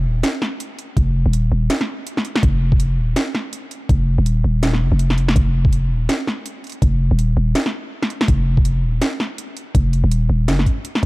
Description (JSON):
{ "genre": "half-time drum and bass", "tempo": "164 BPM", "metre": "4/4", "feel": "swing 59% on 16ths, half-time", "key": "unclear", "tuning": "A4 = 440 Hz", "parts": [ { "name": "growling 808-style bass", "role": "bass", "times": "0.0-11.1 s", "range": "Eb1 to Gb1", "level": "-16 LUFS", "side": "equal", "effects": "none" }, { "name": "drum and bass drum kit", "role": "drums", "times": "0.2-11.1 s", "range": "hi-hat, snare drum", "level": "-23 LUFS", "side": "right 1 dB", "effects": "overdrive, studio reverb" }, { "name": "electronic kick drum", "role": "drums", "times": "1.0-10.7 s", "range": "none", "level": "-17 LUFS", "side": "equal", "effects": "studio reverb" } ], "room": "digital ambience", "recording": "dark, warm production", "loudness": "-16 LUFS", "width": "side -21 dB against mid", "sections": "0.0-11.1 A section", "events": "none", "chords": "none" }